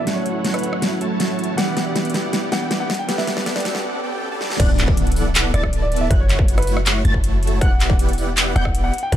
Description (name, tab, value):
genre	future bass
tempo	159 BPM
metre	4/4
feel	half-time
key	unclear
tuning	A4 = 438 Hz
part	warm grand piano	melody	0.0-9.2 s	B4 to G5	-28 LUFS	right 1 dB	sidechain pumping, low-pass filter, dub echo
part	electric guitar at the edge of break-up	accompaniment	0.0-3.9 s	E3 to F#5	-28 LUFS	right 3 dB	sidechain pumping, ping-pong delay
part	ethereal airy pad	sustained chords	0.0-3.8 s	E3 to F#4	-34 LUFS	right 1 dB	none
part	dense compressed supersaw	riff	0.0-9.2 s	A3 to A5	-25 LUFS	equal	sidechain pumping, low-pass filter
part	warm 808-style bass	bass	0.0-9.2 s	D1 to G1	-20 LUFS	equal	sidechain pumping, high-pass filter
part	riser and impact	sound effects	1.5-6.1 s	none	-30 LUFS	equal	none
part	dubstep drum kit	drums	0.1-9.2 s	crash cymbal, handclaps, hi-hat, rim click, snare drum	-23 LUFS	equal	none
part	wide unison pluck	arpeggios	4.6-9.2 s	F#6 to A6	-32 LUFS	equal	sidechain pumping
part	electronic kick drum	drums	4.6-9.2 s	none	-18 LUFS	equal	distortion
room	little or no reverb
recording	dark, warm production, high-pass filter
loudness	-17 LUFS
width	side -11 dB against mid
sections	0.0-4.6 A section; 4.6-9.2 B section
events	build-up 0.0-4.6; drum fill 0.0-3.8, 4.4; filter sweep on supersaw synth 0.0-4.6; filter sweep 0.0-4.6; break 3.8-4.6; drop 4.6-9.2; impact 4.6-6.1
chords	0.1 F#m7; 1.6 Em9; 2.9 Gmaj9; 4.6 D69; 6.1 F#m7; 7.6 Em9